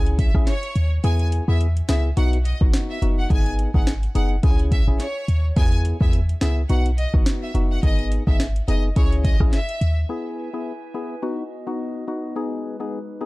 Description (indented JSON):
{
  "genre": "dancehall",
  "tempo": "106 BPM",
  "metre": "4/4",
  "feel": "swing 56% on 16ths",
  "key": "E major",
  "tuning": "A4 = 442 Hz",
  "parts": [
    { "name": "percussive organ stab", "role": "accompaniment", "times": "0.0-13.3 s", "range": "B3 to G#4", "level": "-28 LUFS", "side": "left 2 dB", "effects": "chorus" },
    { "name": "clean 808-style bass", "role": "bass", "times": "0.0-10.0 s", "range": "F#1 to E2", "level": "-20 LUFS", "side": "equal", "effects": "none" },
    { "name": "afro-pop drum kit", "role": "drums", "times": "0.1-10.0 s", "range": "hi-hat, kick drum, rim click, snare drum", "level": "-19 LUFS", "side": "equal", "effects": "vintage 12-bit sampler grit" },
    { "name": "bright symphonic violin section", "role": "melody", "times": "0.2-9.9 s", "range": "C#5 to G#5", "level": "-31 LUFS", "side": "equal", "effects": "tape echo" },
    { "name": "glass harmonica", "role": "sustained chords", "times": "10.1-13.3 s", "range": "G#3 to G#5", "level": "-34 LUFS", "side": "equal", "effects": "sidechain pumping" }
  ],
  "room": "little or no reverb",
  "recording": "dark, warm production",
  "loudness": "-18 LUFS",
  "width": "side -21 dB against mid",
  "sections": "0.0-10.1 A section; 10.1-13.3 B section",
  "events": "kick muted 1.0-2.2",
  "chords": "0.0 C#m; 1.0 E; 2.2 B; 4.4 C#m; 5.6 E; 6.7 B; 9.0 C#m; 10.1 E; 11.2 B; 12.4 G#m"
}